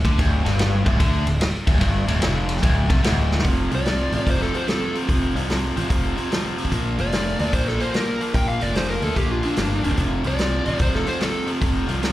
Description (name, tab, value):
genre	blues rock power trio and southern rock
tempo	147 BPM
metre	4/4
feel	swing 66% on 8ths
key	unclear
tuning	A4 = 440 Hz
part	biting overdriven guitar	riff	0.0-12.1 s	D2 to Bb3	-24 LUFS	equal	slapback echo
part	fuzz fingered electric bass	bass	0.0-12.1 s	D1 to D2	-23 LUFS	equal	overdrive
part	vintage drum kit	drums	0.0-12.1 s	hi-hat, kick drum, ride cymbal, snare drum	-23 LUFS	equal	none
part	fuzz lead guitar	melody	3.7-11.5 s	D4 to G5	-26 LUFS	equal	distortion, slapback echo
room	small room ambience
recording	live gig heard through the venue's PA, club reverb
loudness	-19 LUFS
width	side -15 dB against mid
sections	0.0-3.4 A section; 3.4-12.1 B section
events	drum fill 3.2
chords	0.0 Dm; 3.4 F5; 6.7 Bb; 10.0 F5